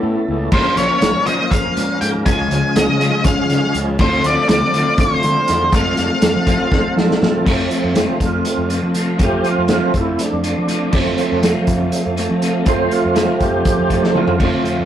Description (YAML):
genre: psychedelic rock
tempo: 242 BPM (eighths)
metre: 7/8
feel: straight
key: unclear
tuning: A4 = 444 Hz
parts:
  - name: tonewheel organ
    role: sustained chords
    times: 0.0-14.9 s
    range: F3 to C5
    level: -20 LUFS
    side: right 3 dB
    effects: slow rotary speaker, overdrive, chorus vibrato
  - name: clean electric guitar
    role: riff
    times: 0.0-14.9 s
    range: Bb2 to C#5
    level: -21 LUFS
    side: left 3 dB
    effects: rotary speaker
  - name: fuzz fingered electric bass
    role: bass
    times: 0.0-14.9 s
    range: Bb1 to F3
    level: -23 LUFS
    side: equal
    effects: overdrive
  - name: octave-fuzz lead guitar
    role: melody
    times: 0.5-6.9 s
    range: C5 to Ab5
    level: -18 LUFS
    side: left 1 dB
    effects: distortion
  - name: vintage drum kit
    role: drums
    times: 0.5-14.8 s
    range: crash cymbal, hi-hat, kick drum, snare drum, toms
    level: -18 LUFS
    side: equal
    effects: none
  - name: congas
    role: percussion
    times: 0.5-7.5 s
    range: none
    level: -31 LUFS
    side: right 3 dB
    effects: none
room: moderate studio reverb, RT60 0.6 s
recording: rough rehearsal-room recording, tube saturation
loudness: -14 LUFS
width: side -10 dB against mid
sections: 0.0-7.5 A section; 7.5-14.9 B section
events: drum fill 6.7-7.5, 14.0-14.4; tonewheel organ solo 7.5-14.9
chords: 0.0 Aadd9; 0.5 Bbmadd9; 2.3 Db; 4.0 Dm7; 5.7 F